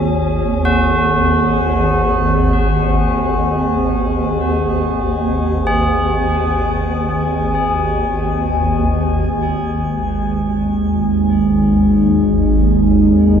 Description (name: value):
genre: dark ambient drone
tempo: free time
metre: none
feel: none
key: unclear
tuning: A4 = 435 Hz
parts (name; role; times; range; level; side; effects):
- swarming drone; drone; 0.0-13.4 s; G#1 to D#2; -16 LUFS; equal; built-in reverb
- metallic inharmonic drone; texture; 0.0-8.7 s; G#4; -25 LUFS; left 2 dB; chorus, built-in reverb, shimmer reverb
- tubular bells; arpeggios; 0.7-13.2 s; F#4 to G#4; -21 LUFS; left 1 dB; ping-pong delay, shimmer reverb
- deep dark ambient pad; sustained chords; 10.0-13.4 s; G#3 to A#4; -14 LUFS; right 1 dB; chorus, built-in reverb
room: wet huge ambient reverb, RT60 8.5 s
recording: dreamy mix soaked in reverb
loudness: -14 LUFS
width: side -8 dB against mid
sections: 0.0-8.7 A section; 8.7-13.4 B section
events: filter sweep on synth drone 8.7-13.4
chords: 0.0 G#5; 8.7 G#sus2